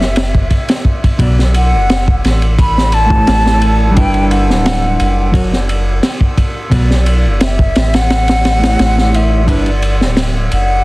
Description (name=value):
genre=trip hop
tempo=87 BPM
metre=4/4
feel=straight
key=B minor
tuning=A4 = 436 Hz
part: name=breathy concert flute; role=melody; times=0.0-10.8 s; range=D5 to B5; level=-18 LUFS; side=equal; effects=tape echo
part: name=mellow electric guitar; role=accompaniment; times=0.0-9.7 s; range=B2 to D5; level=-18 LUFS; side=equal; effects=tremolo, tape echo
part: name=soft dub sub bass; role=bass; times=0.0-10.8 s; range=D1 to B1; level=-13 LUFS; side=equal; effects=none
part: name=crunchy breakbeat drum kit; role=drums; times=0.0-10.7 s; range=kick drum, ride cymbal, snare drum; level=-14 LUFS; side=equal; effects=none
room=small room ambience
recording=dense, heavily limited modern master, vinyl crackle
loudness=-10 LUFS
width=side -21 dB against mid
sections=0.0-10.8 A section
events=none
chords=0.0 N.C.; 1.2 Bm; 2.6 A7; 4.0 G6; 5.3 F#; 6.7 Bm; 8.1 A7; 9.5 G6